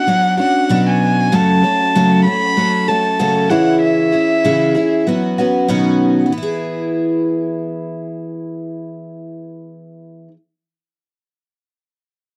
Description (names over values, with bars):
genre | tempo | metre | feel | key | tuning
pop | 96 BPM | 4/4 | swing 60% on 16ths | E major | A4 = 440 Hz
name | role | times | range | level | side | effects
warm violin | melody | 0.0-5.0 s | E5 to B5 | -19 LUFS | equal | none
picked twelve-string acoustic guitar | accompaniment | 0.0-10.4 s | F#2 to A4 | -18 LUFS | equal | none
room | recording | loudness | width
light reverb | dry, close 1970s-style studio recording | -15 LUFS | mono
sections
0.0-6.3 A section; 6.3-8.8 B section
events
none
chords
0.0 Bmadd9; 1.3 F#m; 3.5 C#m; 5.1 Badd9; 6.3 E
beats
0.07 0.69 | 1.32 1.94 2.56 3.19 | 3.81 4.43 5.06 5.68 | 6.30 6.93 7.55 8.18